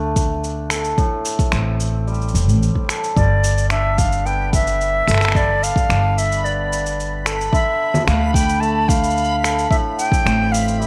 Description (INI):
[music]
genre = folktronica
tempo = 110 BPM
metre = 4/4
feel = straight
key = G mixolydian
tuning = A4 = 440 Hz
[part]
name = hammered dulcimer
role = arpeggios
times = 0.0-10.9 s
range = A2 to A4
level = -27 LUFS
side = equal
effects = digital delay
[part]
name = upright bass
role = bass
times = 0.0-10.9 s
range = E1 to D2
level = -22 LUFS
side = equal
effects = none
[part]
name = electronic kick drum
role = drums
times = 0.2-10.2 s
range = none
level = -21 LUFS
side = equal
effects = none
[part]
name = electronic shaker, finger snaps and congas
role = drums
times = 0.2-10.9 s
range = none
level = -27 LUFS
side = equal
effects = none
[part]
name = breathy silver concert flute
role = melody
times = 3.2-10.9 s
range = D5 to A5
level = -22 LUFS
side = equal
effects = digital delay
[part]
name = backwards swelling texture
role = texture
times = 3.9-10.9 s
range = B5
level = -35 LUFS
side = equal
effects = built-in reverb
[sound]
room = light reverb, small room ambience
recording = vinyl crackle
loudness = -18 LUFS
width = mono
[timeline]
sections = 0.0-10.9 A section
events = none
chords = 0.0 D5; 1.0 Am7; 3.2 Gadd9; 7.5 Dmadd9; 9.7 Am7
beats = 0.44 | 0.98 1.53 2.07 2.62 | 3.16 3.71 4.25 4.80 | 5.35 5.89 6.44 6.98 | 7.53 8.07 8.62 9.16 | 9.71 10.26 10.80